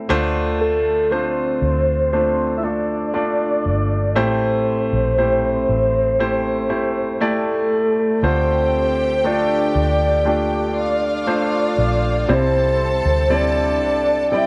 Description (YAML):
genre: pop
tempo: 59 BPM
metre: 4/4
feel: straight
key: D minor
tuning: A4 = 443 Hz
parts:
  - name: warm grand piano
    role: accompaniment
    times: 0.0-14.5 s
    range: A2 to D5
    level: -24 LUFS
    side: equal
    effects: none
  - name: vintage muted fingered electric bass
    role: bass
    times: 0.1-14.5 s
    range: G1 to D2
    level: -25 LUFS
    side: equal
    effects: none
  - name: soft octave-layered synth lead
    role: melody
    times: 0.6-14.5 s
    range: A4 to E5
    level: -22 LUFS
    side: equal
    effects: chorus, phaser
  - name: warm studio violin section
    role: second line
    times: 8.2-14.5 s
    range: F4 to A5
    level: -29 LUFS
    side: equal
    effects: none
room: wet echo chamber reverb, RT60 2.0 s, studio reverb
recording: none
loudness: -19 LUFS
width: mono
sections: 0.0-8.2 A section; 8.2-14.5 B section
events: none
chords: 0.1 Dm7; 4.2 Am7; 8.2 Dm7; 12.3 C